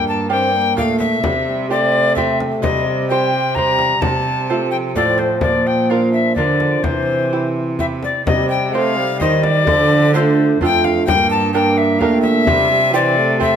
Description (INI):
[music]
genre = classical, renaissance-style consort dance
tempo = 128 BPM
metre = 3/4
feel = straight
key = unclear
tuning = A4 = 440 Hz
[part]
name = alto recorder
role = melody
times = 0.0-13.6 s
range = C5 to Bb5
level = -17 LUFS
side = left 4 dB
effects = none
[part]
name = clear trombone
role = accompaniment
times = 0.0-13.6 s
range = E3 to C4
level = -22 LUFS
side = left 2 dB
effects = none
[part]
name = lute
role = accompaniment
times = 0.0-13.6 s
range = F2 to D5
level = -20 LUFS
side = right 5 dB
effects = none
[part]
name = rich cello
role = bass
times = 0.0-13.6 s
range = F2 to Eb3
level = -21 LUFS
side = right 2 dB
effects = none
[part]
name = frame drum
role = percussion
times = 0.8-13.6 s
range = none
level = -24 LUFS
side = left 2 dB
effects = none
[sound]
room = wet stone room reverb, RT60 1.3 s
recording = minimal, uncompressed stereo recording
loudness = -14 LUFS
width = side -8 dB against mid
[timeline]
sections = 0.0-8.3 A section; 8.3-13.6 A section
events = none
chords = 0.0 Gm; 1.2 C; 2.6 Cm; 4.0 F/C; 5.4 Bb; 6.8 C; 8.3 Cm; 9.7 Dm; 11.1 Gm; 12.5 C